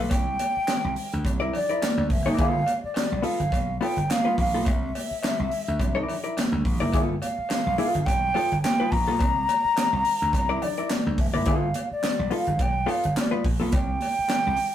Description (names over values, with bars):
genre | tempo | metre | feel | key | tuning
funk | 106 BPM | 4/4 | swing 56% on 16ths | G mixolydian | A4 = 440 Hz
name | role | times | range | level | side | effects
hollow-body jazz guitar | accompaniment | 0.0-13.7 s | B3 to D5 | -28 LUFS | left 3 dB | none
slap bass | bass | 0.0-14.6 s | F1 to D2 | -29 LUFS | equal | none
breathy mellow silver concert flute | melody | 0.1-14.7 s | D5 to Bb5 | -26 LUFS | equal | none
crisp fusion drum kit | drums | 0.1-14.7 s | handclaps, hi-hat, kick drum, snare drum | -28 LUFS | equal | none
congas | percussion | 0.1-14.4 s | none | -31 LUFS | right 1 dB | none
cowbell | percussion | 0.1-14.4 s | none | -39 LUFS | left 1 dB | none
room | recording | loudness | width
moderate studio reverb, RT60 0.6 s | rough rehearsal-room recording | -22 LUFS | side -11 dB against mid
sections
0.0-14.7 A section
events
none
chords
0.1 C9; 2.4 G9; 4.7 C9; 6.9 G9; 9.2 C9; 11.5 G9; 13.7 C5